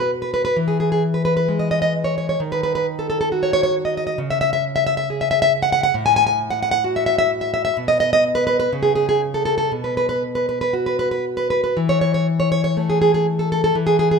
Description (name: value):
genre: romantic piece for solo classical guitar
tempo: 57-70 BPM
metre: 2/4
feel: rubato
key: E major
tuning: A4 = 440 Hz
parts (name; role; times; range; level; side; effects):
- nylon-string guitar; solo; 0.0-14.2 s; A2 to G#5; -17 LUFS; equal; none
room: moderate recital hall reverb, RT60 1.9 s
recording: minimal, uncompressed stereo recording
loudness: -17 LUFS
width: side -5 dB against mid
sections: 0.0-11.8 A section; 11.8-14.2 B section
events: none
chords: 0.0 B5; 0.6 E; 2.4 D#m7b5; 4.2 C#5; 6.0 F#m/A; 7.8 N.C.; 9.7 B5; 11.8 Eadd11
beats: | 0.56 1.47 | 2.39 3.31 | 4.19 5.08 | 5.95 6.85 | 7.76 8.70 | 9.71 10.74 | 11.76 12.76 | 13.74